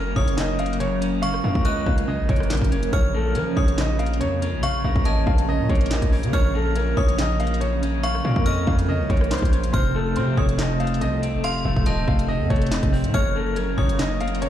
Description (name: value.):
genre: hip hop, drill.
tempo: 141 BPM.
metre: 4/4.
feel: half-time.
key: Bb harmonic minor.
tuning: A4 = 440 Hz.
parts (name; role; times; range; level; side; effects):
clear upright piano; melody; 0.0-14.5 s; A4 to F5; -28 LUFS; equal; ping-pong delay.
metallic FM bell; second line; 0.0-14.4 s; A5 to Gb6; -32 LUFS; left 2 dB; chorus, phaser, ping-pong delay.
electric guitar at the edge of break-up; accompaniment; 0.0-14.5 s; C3 to Db4; -27 LUFS; left 1 dB; tremolo.
airy breathy pad; sustained chords; 0.0-14.5 s; F3 to Bb4; -31 LUFS; right 1 dB; chorus, phaser.
distorted 808-style bass; bass; 0.0-14.5 s; Eb1 to F3; -24 LUFS; equal; distortion.
drill drum kit; drums; 0.2-14.5 s; handclaps, hi-hat, kick drum, rim click, snare drum; -23 LUFS; equal; none.
room: little or no reverb.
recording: played on a big sound system in a bare room, large studio reverb.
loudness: -19 LUFS.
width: side -11 dB against mid.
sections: 0.0-2.9 A section; 2.9-14.5 A section.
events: none.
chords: 0.0 Gb; 2.9 Bbm; 9.7 F; 13.1 Gb.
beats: 0.38 0.80 | 1.23 1.65 2.08 2.50 | 2.93 3.35 3.78 4.21 | 4.63 5.06 5.48 5.91 | 6.33 6.76 7.18 7.61 | 8.04 8.46 8.89 9.31 | 9.74 10.16 10.59 11.01 | 11.44 11.87 12.29 12.72 | 13.14 13.57 13.99 14.42.